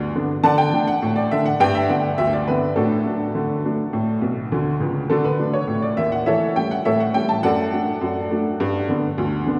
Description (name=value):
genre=ragtime piano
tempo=103 BPM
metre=2/4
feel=straight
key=D major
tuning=A4 = 442 Hz
part: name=clear upright piano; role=solo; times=0.0-9.6 s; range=B1 to A5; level=-21 LUFS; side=equal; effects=none
room=wet cathedral reverb, RT60 5.1 s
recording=in a vast, echoing space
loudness=-21 LUFS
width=mono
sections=0.0-9.6 A section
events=upright piano fill 4.2-5.1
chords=0.4 D; 1.6 G; 2.8 D/A; 3.9 A; 5.1 D; 6.3 A7/E; 7.4 D/F#; 8.6 G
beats=| 0.43 1.01 | 1.59 2.18 | 2.76 3.35 | 3.93 4.52 | 5.10 5.69 | 6.27 6.85 | 7.44 8.02 | 8.60 9.18